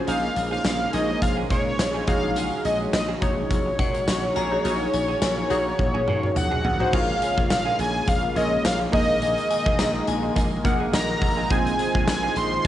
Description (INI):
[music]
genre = 1980s-style pop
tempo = 105 BPM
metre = 4/4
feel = swing 55% on 16ths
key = Bb minor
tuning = A4 = 442 Hz
[part]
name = glassy digital keys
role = accompaniment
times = 0.0-12.7 s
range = Bb3 to Gb5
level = -28 LUFS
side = equal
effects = chorus, cassette tape, plate reverb
[part]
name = warm analog pad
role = sustained chords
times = 0.0-12.7 s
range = Db3 to Bb3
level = -32 LUFS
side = equal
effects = chorus, tremolo, cassette tape, plate reverb
[part]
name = fat analog lead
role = melody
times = 0.1-12.7 s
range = Db5 to C6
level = -25 LUFS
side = equal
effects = cassette tape, plate reverb
[part]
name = direct-recorded clean electric guitar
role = riff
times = 0.1-12.7 s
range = Bb3 to Ab4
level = -34 LUFS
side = right 8 dB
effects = lush chorus, cassette tape, analog delay
[part]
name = slap bass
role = bass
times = 0.1-12.7 s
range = Bb1 to Bb2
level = -29 LUFS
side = equal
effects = none
[part]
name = huge arena drum kit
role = drums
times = 0.1-12.7 s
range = crash cymbal, hi-hat, kick drum, snare drum, tambourine, toms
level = -26 LUFS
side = equal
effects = none
[part]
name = tambourine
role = percussion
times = 0.6-12.2 s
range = none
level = -39 LUFS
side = left 12 dB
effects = none
[part]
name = glassy synth bell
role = second line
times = 3.8-10.8 s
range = Gb5 to Bb5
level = -34 LUFS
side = left 8 dB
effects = chorus, cassette tape, analog delay, plate reverb
[sound]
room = wet booth ambience, RT60 0.3 s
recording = home recording on cassette, nothing above 10.7 kHz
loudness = -20 LUFS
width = side -12 dB against mid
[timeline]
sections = 0.0-6.9 A section; 6.9-12.7 B section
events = drum fill 5.8-6.9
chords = 0.1 Bbm11; 2.1 Ab7sus4/Bb; 6.9 Bbm7; 8.9 Ebsus4/Bb; 11.5 Fm7/Bb